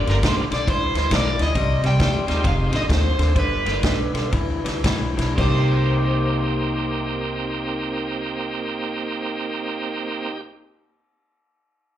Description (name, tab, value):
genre	electric blues shuffle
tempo	109-137 BPM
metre	4/4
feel	swing 63% on 8ths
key	C minor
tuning	A4 = 440 Hz
part	overdriven semi-hollow guitar	melody	0.0-10.3 s	A#4 to G5	-26 LUFS	equal	slapback echo, plate reverb
part	bright tonewheel organ	accompaniment	0.0-10.4 s	Ab3 to A#4	-26 LUFS	right 4 dB	slow rotary speaker, overdrive, slapback echo
part	electric guitar through a small old amp	riff	0.0-10.4 s	F2 to G4	-27 LUFS	left 3 dB	slapback echo
part	upright bass	bass	0.0-10.3 s	F1 to F2	-23 LUFS	equal	none
part	swinging big-band drum kit	drums	0.1-5.5 s	crash cymbal, kick drum, ride cymbal, snare drum	-23 LUFS	equal	none
room	light reverb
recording	live gig heard through the venue's PA, club reverb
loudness	-19 LUFS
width	side -11 dB against mid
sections	0.0-5.4 A section; 5.4-9.8 B section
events	slowing down 1.5-5.4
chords	0.0 G7#9; 1.5 Cm; 2.4 Fm7; 3.4 G7#9; 5.4 Cm7